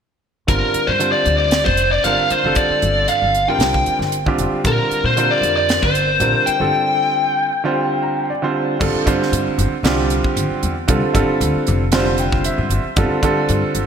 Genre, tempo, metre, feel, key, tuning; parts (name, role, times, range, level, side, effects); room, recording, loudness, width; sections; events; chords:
electric jazz fusion; 115 BPM; 4/4; swing 54% on 16ths; G minor; A4 = 440 Hz
biting lead guitar; melody; 0.5-8.2 s; Bb4 to G5; -17 LUFS; left 1 dB; overdrive, digital delay
clear baby grand piano; accompaniment; 0.5-13.9 s; D3 to Bb5; -20 LUFS; right 2 dB
upright bass; bass; 0.5-13.9 s; F1 to Bb2; -21 LUFS; left 1 dB
crisp fusion drum kit; drums; 0.5-13.9 s; crash cymbal, hi-hat, kick drum, snare drum; -21 LUFS; equal
wet lush hall reverb, RT60 1.9 s, small room ambience; bright 1980s-style digital production; -15 LUFS; side -7 dB against mid
0.5-8.8 A section; 8.8-13.9 B section
break 6.7-8.8; grand piano fill 7.8-8.8, 11.9-13.0
0.5 Gm11; 4.6 Bb69; 8.8 G13sus4